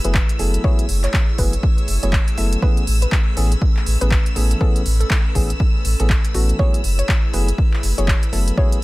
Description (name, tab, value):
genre	deep house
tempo	121 BPM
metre	4/4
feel	swing 60% on 16ths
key	unclear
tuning	A4 = 440 Hz
part	soft round pluck	melody	0.0-8.8 s	F#4 to E5	-29 LUFS	equal	chorus, dub echo
part	airy breathy pad	sustained chords	0.0-8.8 s	A3 to C#5	-33 LUFS	left 2 dB	chorus, sidechain pumping
part	bright tine electric piano	stabs	0.0-8.8 s	E3 to A4	-28 LUFS	equal	sidechain pumping, dub echo
part	sub bass with octave	bass	0.0-8.5 s	F#1 to A1	-18 LUFS	equal	none
part	deep house drum kit	drums	0.0-8.8 s	handclaps, hi-hat	-25 LUFS	equal	none
part	string machine, violins	texture	0.0-8.8 s	E6	-32 LUFS	equal	ensemble chorus, sidechain pumping
part	electronic kick drum	drums	0.1-8.7 s	none	-17 LUFS	equal	none
room	digital ambience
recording	none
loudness	-15 LUFS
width	side -20 dB against mid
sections	0.0-8.8 A section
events	none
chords	0.0 F#m11; 2.6 Amaj9; 6.6 F#m11